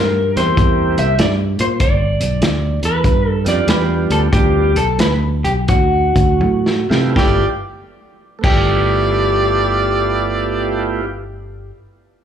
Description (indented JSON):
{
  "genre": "electric blues shuffle",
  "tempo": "78-98 BPM",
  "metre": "4/4",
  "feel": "swing 66% on 8ths",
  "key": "G mixolydian",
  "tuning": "A4 = 440 Hz",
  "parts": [
    { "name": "electric guitar through a small old amp", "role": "melody", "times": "0.0-11.7 s", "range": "F#4 to E5", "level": "-19 LUFS", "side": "left 1 dB", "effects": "slapback echo" },
    { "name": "fingered electric bass", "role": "bass", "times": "0.0-11.7 s", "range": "G1 to C3", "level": "-18 LUFS", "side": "equal", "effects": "none" },
    { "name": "tonewheel organ", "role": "accompaniment", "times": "0.4-11.1 s", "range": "G3 to G4", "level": "-21 LUFS", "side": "right 7 dB", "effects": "slow rotary speaker, slapback echo" },
    { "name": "vintage drum kit", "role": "drums", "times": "0.4-8.6 s", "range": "crash cymbal, hi-hat, kick drum, snare drum, toms", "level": "-18 LUFS", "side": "equal", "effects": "none" },
    { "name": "clear harmonica", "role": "second line", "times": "7.2-11.0 s", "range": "D5", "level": "-20 LUFS", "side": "right 3 dB", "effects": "overdrive, slapback echo" }
  ],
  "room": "studio ambience",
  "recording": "live gig heard through the venue's PA, club reverb",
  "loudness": "-13 LUFS",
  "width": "side -8 dB against mid",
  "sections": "0.0-7.2 A section; 7.2-10.2 B section",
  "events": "slowing down 1.8-7.2; drum fill 6.4-7.2",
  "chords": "0.0 C7; 1.8 G7; 5.7 D7; 7.2 G13"
}